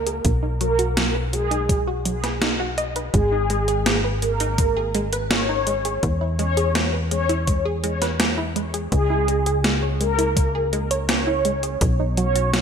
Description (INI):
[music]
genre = synthwave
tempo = 83 BPM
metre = 4/4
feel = straight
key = unclear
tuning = A4 = 435 Hz
[part]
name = mellow synth brass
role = melody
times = 0.0-12.6 s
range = G#4 to C#5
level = -24 LUFS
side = equal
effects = chorus, digital delay
[part]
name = tight sequencer bass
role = bass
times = 0.0-12.6 s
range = G#1 to E2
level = -24 LUFS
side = equal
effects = none
[part]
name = wide unison pluck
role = arpeggios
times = 0.1-12.6 s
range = F#3 to D#5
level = -28 LUFS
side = right 1 dB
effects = ping-pong delay
[part]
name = gated 80s digital drum machine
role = drums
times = 0.1-12.6 s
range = hi-hat, snare drum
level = -24 LUFS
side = right 1 dB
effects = gated reverb, gated reverb snare
[part]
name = electronic kick drum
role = drums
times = 0.2-12.0 s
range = none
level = -22 LUFS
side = equal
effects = none
[sound]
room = moderate plate reverb, RT60 2.0 s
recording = bright 1980s-style digital production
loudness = -19 LUFS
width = side -7 dB against mid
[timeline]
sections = 0.0-12.6 A section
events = none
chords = 0.2 B; 3.1 G#5; 6.0 E; 8.9 C#m; 11.8 B